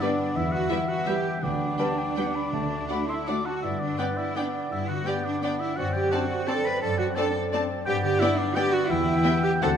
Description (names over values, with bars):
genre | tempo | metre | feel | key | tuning
classical, orchestral ballroom waltz | 156-187 BPM | 3/4 | rubato | G major | A4 = 440 Hz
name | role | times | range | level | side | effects
clear symphonic violin section | melody | 0.0-9.7 s | D5 to A5 | -39 LUFS | left 4 dB | none
concert flute | second line | 0.0-9.8 s | D5 to D6 | -34 LUFS | left 1 dB | none
warm oboe | second line | 0.0-9.8 s | B4 to B5 | -33 LUFS | equal | none
warm symphonic violin section | second line | 0.0-9.7 s | B4 to E5 | -36 LUFS | left 3 dB | none
clear symphonic viola section | accompaniment | 0.0-9.7 s | G3 to D4 | -36 LUFS | right 2 dB | none
warm bassoon | accompaniment | 0.0-9.8 s | A3 to C4 | -33 LUFS | right 3 dB | none
mellow French horn section | sustained chords | 0.0-9.8 s | A3 to G4 | -36 LUFS | left 4 dB | none
concert harp | arpeggios | 0.0-9.8 s | F#2 to E5 | -32 LUFS | left 9 dB | none
rich symphonic cello section | bass | 0.0-9.7 s | B3 to B4 | -28 LUFS | right 3 dB | none
warm symphonic double bass section | bass | 0.4-9.8 s | D2 to G2 | -34 LUFS | right 3 dB | none
timpani | percussion | 1.4-3.0 s | D3 | -37 LUFS | right 2 dB | none
room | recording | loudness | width
moderate concert hall reverb, RT60 2.3 s | none | -23 LUFS | side -8 dB against mid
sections
0.0-9.8 A section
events
none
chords
0.4 Em; 1.4 G/D; 2.5 D; 3.6 G; 5.8 D7/F#; 7.9 G; 8.9 Em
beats
0.03 | 0.36 0.70 1.07 | 1.43 1.79 2.17 | 2.53 2.89 3.27 | 3.63 3.99 4.37 | 4.72 5.07 5.43 | 5.78 6.12 6.48 | 6.83 7.17 7.53 | 7.86 8.20 8.56 | 8.89 9.24 9.62